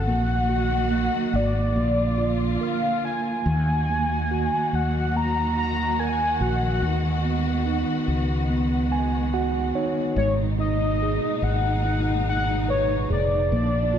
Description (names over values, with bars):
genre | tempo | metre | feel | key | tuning
pop ballad | 72 BPM | 4/4 | straight | Eb minor | A4 = 439 Hz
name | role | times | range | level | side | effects
warm velvety synth lead | melody | 0.0-14.0 s | Db5 to Bb5 | -26 LUFS | left 1 dB | chorus
mellow tine electric piano | accompaniment | 0.0-14.0 s | Eb3 to G#5 | -26 LUFS | moving between right 1 dB and right 8 dB | auto-pan
warm studio string section | sustained chords | 0.0-14.0 s | Bb2 to Gb4 | -30 LUFS | left 4 dB | none
mellow fretless electric bass | bass | 0.0-14.0 s | F1 to Eb2 | -25 LUFS | equal | none
room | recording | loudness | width
wet recital hall reverb, RT60 1.5 s | none | -21 LUFS | side -9 dB against mid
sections
0.0-14.0 A section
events
tine electric piano fill 8.5-10.2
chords
0.1 Ebm/Bb; 1.8 Bb; 3.5 Ebm; 6.8 B6; 10.2 Abmadd9